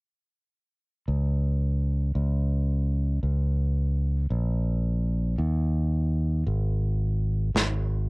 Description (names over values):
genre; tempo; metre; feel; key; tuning
slow gospel; 56 BPM (dotted quarters); 6/8; straight; unclear; A4 = 440 Hz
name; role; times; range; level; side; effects
modern bright fingered electric bass; bass; 1.1-8.1 s; Ab1 to Eb2; -24 LUFS; equal; none
snare drum; drums; 7.6-7.7 s; none; -25 LUFS; equal; cassette tape
room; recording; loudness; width
little or no reverb; home recording on cassette; -24 LUFS; side -33 dB against mid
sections
1.1-8.1 A section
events
drum fill 7.5-8.1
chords
none